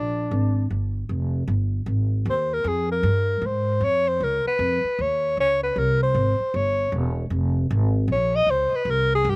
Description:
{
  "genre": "jazz, small-group swing and bop",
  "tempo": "154 BPM",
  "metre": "4/4",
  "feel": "swing 64% on 8ths",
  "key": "F minor",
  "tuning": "A4 = 440 Hz",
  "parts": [
    { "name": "breathy alto saxophone", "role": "melody", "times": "0.0-9.4 s", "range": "D4 to Eb5", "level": "-21 LUFS", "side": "left 1 dB", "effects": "none" },
    { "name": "upright bass", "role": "bass", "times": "0.0-9.4 s", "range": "E1 to Ab2", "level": "-23 LUFS", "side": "equal", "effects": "none" }
  ],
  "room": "little or no reverb",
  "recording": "recorded outdoors, with no room sound",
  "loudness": "-20 LUFS",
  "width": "side -25 dB against mid",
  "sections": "0.0-9.4 A section",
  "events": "alto saxophone solo 0.0-9.4",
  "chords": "0.0 Gm; 1.1 Fm7; 4.2 Db7; 5.8 C; 7.3 Fm; 8.1 Bbm",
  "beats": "0.32 0.71 | 1.10 1.49 1.87 2.26 | 2.65 3.04 3.43 3.82 | 4.21 4.59 4.98 5.37 | 5.76 6.15 6.54 6.92 | 7.31 7.70 8.09 8.48 | 8.87 9.25"
}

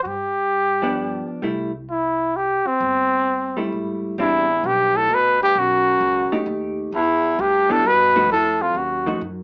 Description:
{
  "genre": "jazz",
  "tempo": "131 BPM",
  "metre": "3/4",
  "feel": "swing 67% on 8ths",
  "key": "C major",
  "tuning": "A4 = 440 Hz",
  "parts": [
    { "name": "mellow trumpet", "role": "melody", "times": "0.0-9.2 s", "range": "C4 to B4", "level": "-17 LUFS", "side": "equal", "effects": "none" },
    { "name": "upright bass", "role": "bass", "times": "0.1-9.4 s", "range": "G1 to G2", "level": "-35 LUFS", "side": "equal", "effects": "none" },
    { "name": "vintage hollow-body jazz guitar", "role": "accompaniment", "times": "0.8-9.2 s", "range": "E3 to G4", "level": "-24 LUFS", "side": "equal", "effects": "none" },
    { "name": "warm baritone saxophone", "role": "second line", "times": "4.2-9.2 s", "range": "E2 to B2", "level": "-25 LUFS", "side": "equal", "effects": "none" }
  ],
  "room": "moderate club reverb, RT60 0.6 s",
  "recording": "small speaker sound",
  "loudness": "-17 LUFS",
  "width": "side -34 dB against mid",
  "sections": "0.0-4.2 A section; 4.2-9.4 B section",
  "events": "none",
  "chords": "0.1 G7; 1.4 C6; 4.2 Am11; 5.6 B7b13; 6.9 Em7; 8.3 F7b9",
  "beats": "| 0.06 0.52 0.97 | 1.43 1.89 2.35 | 2.81 3.27 3.73 | 4.18 4.64 5.10 | 5.55 6.01 6.47 | 6.93 7.38 7.84 | 8.30 8.76 9.22"
}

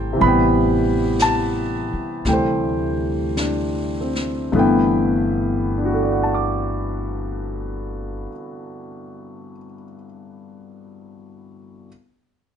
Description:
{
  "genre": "jazz ballad",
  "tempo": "49-62 BPM",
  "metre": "4/4",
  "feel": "swing 69% on 8ths",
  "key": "G major",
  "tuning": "A4 = 441 Hz",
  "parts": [
    { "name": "warm concert grand piano", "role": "accompaniment", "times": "0.0-11.9 s", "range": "G2 to D6", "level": "-20 LUFS", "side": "equal", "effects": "none" },
    { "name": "upright bass", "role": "bass", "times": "0.0-8.2 s", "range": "G1 to D2", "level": "-26 LUFS", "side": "left 1 dB", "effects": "none" },
    { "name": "jazz brush drum kit", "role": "drums", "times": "0.2-5.5 s", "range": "brushed snare drum, hi-hat, snare drum", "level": "-31 LUFS", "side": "left 3 dB", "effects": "none" }
  ],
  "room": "light reverb",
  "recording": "nothing above 10.8 kHz",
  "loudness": "-18 LUFS",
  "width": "side -8 dB against mid",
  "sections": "0.0-4.5 A section; 4.5-9.4 B section",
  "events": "slowing down 0.0-4.5",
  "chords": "0.2 Am9; 2.2 D7sus4; 4.5 G6",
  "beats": "| 0.20 1.20 2.25 3.36 | 4.55 5.77 6.97 8.17"
}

